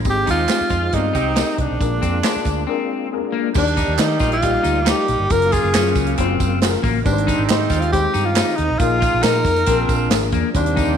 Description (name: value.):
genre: uptempo 1960s-style soul.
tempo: 137 BPM.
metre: 4/4.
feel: straight.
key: Eb major.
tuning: A4 = 440 Hz.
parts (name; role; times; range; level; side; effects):
warm upright piano; accompaniment; 0.0-11.0 s; Ab2 to F5; -25 LUFS; left 11 dB; none.
percussive tonewheel organ; sustained chords; 0.0-11.0 s; C3 to F5; -29 LUFS; right 1 dB; slow rotary speaker, chorus vibrato.
vintage muted fingered electric bass; bass; 0.0-11.0 s; Gb1 to Eb3; -22 LUFS; right 1 dB; none.
natural country drum kit; drums; 0.0-10.9 s; crash cymbal, hi-hat, kick drum, snare drum; -22 LUFS; right 1 dB; none.
breathy tenor saxophone; melody; 0.1-11.0 s; D4 to Bb4; -20 LUFS; equal; slapback echo.
tambourine and handclaps; percussion; 0.1-10.9 s; none; -30 LUFS; right 12 dB; none.
clear saxophone section; second line; 0.3-11.0 s; Db3 to Bb4; -28 LUFS; right 12 dB; none.
electric guitar at the edge of break-up; riff; 0.3-10.9 s; Bb3 to F4; -26 LUFS; left 10 dB; none.
room: moderate echo chamber reverb, RT60 1.6 s, studio ambience.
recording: 1960s-style stereo with parts hard left and right.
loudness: -16 LUFS.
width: side -8 dB against mid.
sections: 0.0-3.6 A section; 3.6-11.0 B section.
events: break 2.7-3.6.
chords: 0.1 Abmaj7; 1.8 Bb7; 3.6 Ebmaj7; 5.3 Gbmaj7; 7.0 Abmaj7; 8.8 Bb7sus4; 9.7 Bb7.